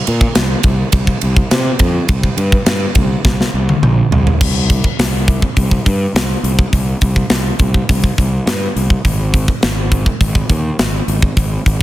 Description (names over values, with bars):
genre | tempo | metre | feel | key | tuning
heavy metal | 104 BPM | 4/4 | straight | C minor | A4 = 440 Hz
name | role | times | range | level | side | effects
fuzz fingered electric bass | bass | 0.1-11.8 s | Ab1 to C3 | -16 LUFS | equal | overdrive
tight metal drum kit | drums | 0.1-11.8 s | crash cymbal, hi-hat, kick drum, ride cymbal, snare drum, toms | -14 LUFS | equal | none
room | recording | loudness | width
little or no reverb | dense, heavily limited modern master | -12 LUFS | side -15 dB against mid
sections
0.0-4.4 A section; 4.4-11.8 B section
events
drum fill 3.3-4.4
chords
none